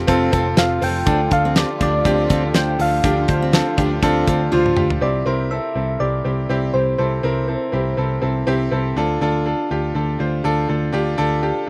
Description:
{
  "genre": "piano-driven pop",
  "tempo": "122 BPM",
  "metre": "4/4",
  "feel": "swing 56% on 16ths",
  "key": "unclear",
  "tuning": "A4 = 441 Hz",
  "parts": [
    { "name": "bright concert grand piano", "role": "accompaniment", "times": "0.0-11.7 s", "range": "C3 to A5", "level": "-23 LUFS", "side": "equal", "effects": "slapback echo" },
    { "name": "warm symphonic string section", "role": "sustained chords", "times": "0.0-5.0 s", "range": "C3 to F4", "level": "-35 LUFS", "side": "equal", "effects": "none" },
    { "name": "vintage muted picked electric bass", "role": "bass", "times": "0.0-11.5 s", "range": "F1 to D2", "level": "-24 LUFS", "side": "equal", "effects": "none" },
    { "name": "picked steel-string acoustic guitar", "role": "riff", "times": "0.1-4.9 s", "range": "C4 to F4", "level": "-26 LUFS", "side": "equal", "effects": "slapback echo" },
    { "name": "damped 70s drum kit", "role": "drums", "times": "0.1-5.0 s", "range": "hi-hat, kick drum, snare drum, toms", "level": "-22 LUFS", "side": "equal", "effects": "none" },
    { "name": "soft struck synth lead", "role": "melody", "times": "0.6-8.7 s", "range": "C5 to G5", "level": "-25 LUFS", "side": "equal", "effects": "chorus, slapback echo" }
  ],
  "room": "little or no reverb",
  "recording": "recorded outdoors, with no room sound",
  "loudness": "-19 LUFS",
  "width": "mono",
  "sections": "0.0-5.0 A section; 5.0-11.7 B section",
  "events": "grand piano fill 4.0-5.0; drum fill 4.5-5.0",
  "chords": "0.0 F; 1.1 Dm; 5.0 C; 9.0 Dm"
}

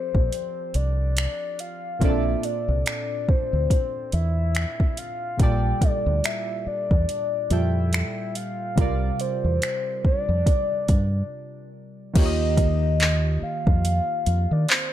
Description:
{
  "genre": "contemporary R&B",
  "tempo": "71 BPM",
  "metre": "4/4",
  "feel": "swing 58% on 16ths",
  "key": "unclear",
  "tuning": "A4 = 440 Hz",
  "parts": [
    { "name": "soft octave-layered synth lead", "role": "melody", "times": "0.0-14.9 s", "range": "C5 to G5", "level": "-28 LUFS", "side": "left 1 dB", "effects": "chorus, phaser, ping-pong delay" },
    { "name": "warm analog keys", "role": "accompaniment", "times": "0.0-14.9 s", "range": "Bb2 to G5", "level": "-30 LUFS", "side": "equal", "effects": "chorus" },
    { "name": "deep dub fingered electric bass", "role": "bass", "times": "0.1-14.6 s", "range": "Bb1 to Eb3", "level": "-22 LUFS", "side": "equal", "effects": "none" },
    { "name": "smooth R&B drum kit", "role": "drums", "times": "0.1-14.9 s", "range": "crash cymbal, finger snaps, handclaps, hi-hat, kick drum", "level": "-22 LUFS", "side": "equal", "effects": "none" }
  ],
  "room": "digital ambience",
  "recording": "dark, warm production",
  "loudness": "-21 LUFS",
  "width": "side -12 dB against mid",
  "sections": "0.0-12.2 A section; 12.2-14.9 B section",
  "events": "break 11.3-12.2",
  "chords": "0.0 F6; 2.0 Bbmaj9#11; 5.4 Gm9/Bb; 8.8 C9sus4; 12.2 Ebadd9"
}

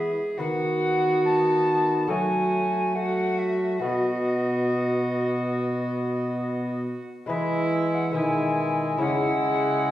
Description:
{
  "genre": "classical, renaissance-style consort dance",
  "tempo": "70 BPM",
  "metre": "4/4",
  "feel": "straight",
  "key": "E major",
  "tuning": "A4 = 440 Hz",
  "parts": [
    { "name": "alto recorder", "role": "melody", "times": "0.0-9.9 s", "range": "D#5 to A5", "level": "-28 LUFS", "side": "left 1 dB", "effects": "none" },
    { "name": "warm viola", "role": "second line", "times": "0.0-9.9 s", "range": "E4 to G#4", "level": "-27 LUFS", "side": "right 1 dB", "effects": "none" },
    { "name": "lute", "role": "accompaniment", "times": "0.0-9.9 s", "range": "B2 to E5", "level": "-33 LUFS", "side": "left 3 dB", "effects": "none" },
    { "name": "mellow bassoon", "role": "accompaniment", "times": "0.0-9.9 s", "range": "G#3 to B3", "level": "-31 LUFS", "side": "left 1 dB", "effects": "none" },
    { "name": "mellow trombone", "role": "bass", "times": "0.0-9.9 s", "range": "B2 to F#3", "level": "-28 LUFS", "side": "equal", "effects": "none" }
  ],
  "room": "wet recital hall reverb, RT60 1.6 s",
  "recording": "heard from further back in the room",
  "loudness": "-22 LUFS",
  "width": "side -13 dB against mid",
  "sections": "0.0-7.3 A section; 7.3-9.9 A section",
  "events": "none",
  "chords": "0.4 B/D#; 2.1 F#m; 3.8 B; 7.3 E; 9.0 C#m"
}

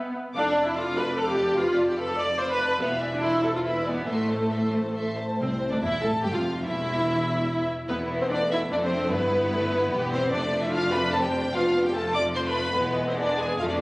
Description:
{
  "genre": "quick classical-period movement for string orchestra",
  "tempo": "146 BPM",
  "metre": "3/4",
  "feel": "rubato",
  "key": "A minor",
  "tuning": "A4 = 442 Hz",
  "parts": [
    { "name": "warm symphonic violin section", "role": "melody", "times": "0.0-13.8 s", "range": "B4 to D6", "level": "-30 LUFS", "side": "left 1 dB", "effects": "none" },
    { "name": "warm symphonic violin section", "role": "second line", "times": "0.0-13.8 s", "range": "G#3 to F5", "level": "-31 LUFS", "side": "equal", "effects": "none" },
    { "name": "rich symphonic viola section", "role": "accompaniment", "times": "0.0-13.8 s", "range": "A3 to D5", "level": "-26 LUFS", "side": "equal", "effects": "none" },
    { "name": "rich symphonic cello section", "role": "bass", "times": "0.4-13.8 s", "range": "C2 to A2", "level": "-32 LUFS", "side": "equal", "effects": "none" },
    { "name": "warm chamber double bass section", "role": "bass", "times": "0.4-13.8 s", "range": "E1 to C2", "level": "-35 LUFS", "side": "equal", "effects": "none" }
  ],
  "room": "moderate concert hall reverb, RT60 2.4 s",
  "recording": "recorded on a phone in the room, studio reverb, compression, nothing above 10.8 kHz",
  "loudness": "-23 LUFS",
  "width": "side -22 dB against mid",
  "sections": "0.0-5.4 A section; 5.4-13.8 B section",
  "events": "none",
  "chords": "0.4 Dm/F; 1.6 Bm7b5/F; 2.8 E7b9; 3.2 Am/E; 3.6 E7; 4.1 Am; 6.7 N.C.; 7.9 E5; 9.1 Em/G; 10.3 Dm/F; 11.5 Bm7b5/F; 12.8 E"
}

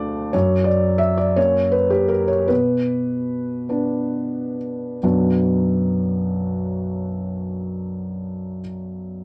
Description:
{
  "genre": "neoclassical minimalist piano",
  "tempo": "44-62 BPM (dotted quarters)",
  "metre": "6/8",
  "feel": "rubato",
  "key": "B minor",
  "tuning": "A4 = 440 Hz",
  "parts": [
    { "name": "felt-muted upright piano", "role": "solo", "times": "0.0-9.2 s", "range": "B1 to D6", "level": "-21 LUFS", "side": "equal", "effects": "none" }
  ],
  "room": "light reverb",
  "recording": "worn, warbling old tape, cassette tape, warbly pitch drift",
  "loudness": "-21 LUFS",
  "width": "mono",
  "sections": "0.0-5.0 A section; 5.0-9.2 B section",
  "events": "slowing down 0.0-5.0",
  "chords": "0.3 F#; 2.5 Bm"
}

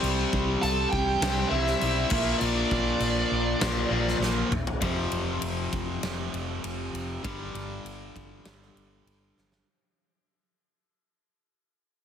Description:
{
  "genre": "hard rock",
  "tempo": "100 BPM",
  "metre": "4/4",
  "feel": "straight",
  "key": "unclear",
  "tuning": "A4 = 442 Hz",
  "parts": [
    { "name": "distorted electric guitar", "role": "riff", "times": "0.0-9.7 s", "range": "F2 to C4", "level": "-33 LUFS", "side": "right 10 dB", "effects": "overdrive" },
    { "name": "overdriven semi-hollow guitar", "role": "riff", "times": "0.0-9.7 s", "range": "F2 to C4", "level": "-31 LUFS", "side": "left 8 dB", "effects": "none" },
    { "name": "fingered electric bass", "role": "bass", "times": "0.0-9.6 s", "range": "F1 to C2", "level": "-32 LUFS", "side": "equal", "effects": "none" },
    { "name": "huge arena drum kit", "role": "drums", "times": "0.0-9.7 s", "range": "crash cymbal, kick drum, ride cymbal, snare drum, toms", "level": "-32 LUFS", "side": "equal", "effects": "none" },
    { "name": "bluesy overdriven lead guitar", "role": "melody", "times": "0.6-4.2 s", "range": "D5 to A5", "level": "-30 LUFS", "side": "right 1 dB", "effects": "distortion, tape echo" },
    { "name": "octave-fuzz lead guitar", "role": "second line", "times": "0.6-4.2 s", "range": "D4 to A4", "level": "-36 LUFS", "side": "right 3 dB", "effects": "distortion" }
  ],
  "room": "light reverb",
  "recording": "heavily compressed radio sound, multiband compression",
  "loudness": "-24 LUFS",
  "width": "side -8 dB against mid",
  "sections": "0.0-4.8 A section; 4.8-9.7 B section",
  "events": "drum fill 4.2-4.8, 9.4-9.7; fade-out 4.8-9.7",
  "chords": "0.0 C; 2.1 Bb; 4.8 F5; 7.2 G5"
}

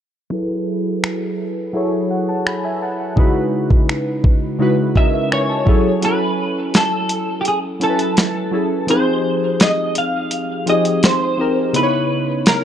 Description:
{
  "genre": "contemporary R&B",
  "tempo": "84 BPM",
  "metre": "4/4",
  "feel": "straight",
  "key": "unclear",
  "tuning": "A4 = 441 Hz",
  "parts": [
    { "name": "warm analog keys", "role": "accompaniment", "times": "0.3-12.6 s", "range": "C#3 to B5", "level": "-18 LUFS", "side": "equal", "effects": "chorus, low-pass filter" },
    { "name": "dusty soul sampler-style drum kit", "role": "drums", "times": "1.0-12.6 s", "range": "finger snaps, hi-hat, kick drum, snare drum", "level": "-15 LUFS", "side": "equal", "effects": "none" },
    { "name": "clean electric guitar", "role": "melody", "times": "5.0-12.6 s", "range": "G4 to F5", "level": "-20 LUFS", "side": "equal", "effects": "ensemble chorus" }
  ],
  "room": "digital ambience",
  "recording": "dark, warm production",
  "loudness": "-15 LUFS",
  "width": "side -9 dB against mid",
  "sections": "0.3-6.0 A section; 6.0-12.6 B section",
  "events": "filter sweep on synth keys 0.3-6.0; synth keys fill 4.6-6.0; kick muted 6.0-12.6",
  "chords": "0.3 F#m11; 3.2 C#m11; 5.7 F#m9; 8.9 Fm9; 11.7 C#m9"
}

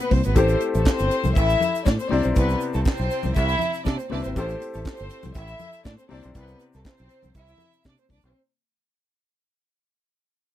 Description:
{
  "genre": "disco",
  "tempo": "120 BPM",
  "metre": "4/4",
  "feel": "straight",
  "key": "unclear",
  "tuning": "A4 = 441 Hz",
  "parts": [
    { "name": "warm chamber violin section", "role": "second line", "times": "0.0-8.3 s", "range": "A3 to E5", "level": "-26 LUFS", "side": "left 1 dB", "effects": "none" },
    { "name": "bright concert grand piano", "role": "accompaniment", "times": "0.0-8.4 s", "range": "C3 to E5", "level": "-28 LUFS", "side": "left 5 dB", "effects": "none" },
    { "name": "tight funk drum kit", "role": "drums", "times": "0.0-8.3 s", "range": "handclaps, hi-hat, kick drum, snare drum", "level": "-22 LUFS", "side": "right 1 dB", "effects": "none" },
    { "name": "egg shaker", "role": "percussion", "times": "0.0-8.3 s", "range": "none", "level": "-48 LUFS", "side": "right 18 dB", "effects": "none" },
    { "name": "fingered electric bass", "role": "bass", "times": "0.1-8.3 s", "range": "G1 to C3", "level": "-24 LUFS", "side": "equal", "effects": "none" },
    { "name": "congas", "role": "percussion", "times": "0.1-8.2 s", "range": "none", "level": "-33 LUFS", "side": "left 8 dB", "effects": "none" }
  ],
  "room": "little or no reverb",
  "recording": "dry, close 1970s-style studio recording",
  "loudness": "-20 LUFS",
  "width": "side -12 dB against mid",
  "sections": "0.0-8.3 A section",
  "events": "fade-out 0.0-8.3",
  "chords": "0.4 Am7; 2.1 Cmaj7; 4.4 Am7; 6.1 C"
}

